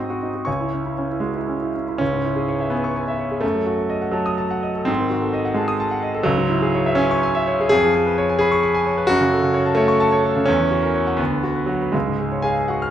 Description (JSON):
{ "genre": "classical, virtuoso piano study", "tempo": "74-88 BPM (dotted quarters)", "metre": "6/8", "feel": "rubato", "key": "C# minor, F# minor from 7.7 s", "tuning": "A4 = 439 Hz", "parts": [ { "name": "clear concert grand piano", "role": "solo", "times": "0.0-12.9 s", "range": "C#2 to E#6", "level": "-18 LUFS", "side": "equal", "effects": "none" } ], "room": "moderate recital hall reverb, RT60 1.5 s", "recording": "none", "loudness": "-18 LUFS", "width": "side -10 dB against mid", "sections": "0.0-2.0 A section; 2.0-12.9 B section", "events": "none", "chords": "0.5 C#m; 3.4 D#dim/F#; 4.9 G#7b9; 6.3 C#m; 7.7 C#7/E#; 9.1 F#m; 10.5 F#7/E; 11.2 Bm/D; 11.9 C#" }